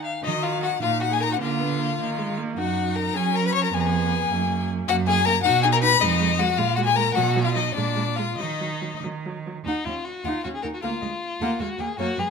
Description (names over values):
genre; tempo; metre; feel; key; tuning
quick classical-period movement for string quartet; 93-108 BPM (dotted quarters); 6/8; rubato; Eb minor; A4 = 436 Hz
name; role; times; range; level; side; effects
clear violin; second line; 0.0-12.3 s; D4 to F5; -28 LUFS; left 4 dB; none
clear violin; melody; 0.2-12.3 s; Cb5 to Db6; -24 LUFS; left 10 dB; none
rich viola; accompaniment; 0.2-12.3 s; F#3 to Gb4; -31 LUFS; right 3 dB; none
rich cello; bass; 0.2-12.2 s; D2 to Gb3; -26 LUFS; right 6 dB; none
room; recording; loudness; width
light reverb; close, detailed microphones; -21 LUFS; side -5 dB against mid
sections
0.2-9.6 A section; 9.6-12.3 A section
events
none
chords
0.2 Ebm; 1.4 Bb/D; 2.0 Eb5; 2.6 Gb5; 3.7 Fdim; 4.3 Gb; 5.4 B; 6.0 Fm7; 6.6 Gbmaj9/Bb; 7.1 B5; 7.7 Bb7; 8.4 Ebm; 10.8 Bb7/D; 11.4 Ebm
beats
| 0.22 0.82 | 1.41 1.99 | 2.57 3.14 | 3.72 4.29 | 4.87 5.43 | 5.99 6.56 | 7.14 7.74 | 8.37 9.01 | 9.65 10.24 | 10.82 11.40 | 11.98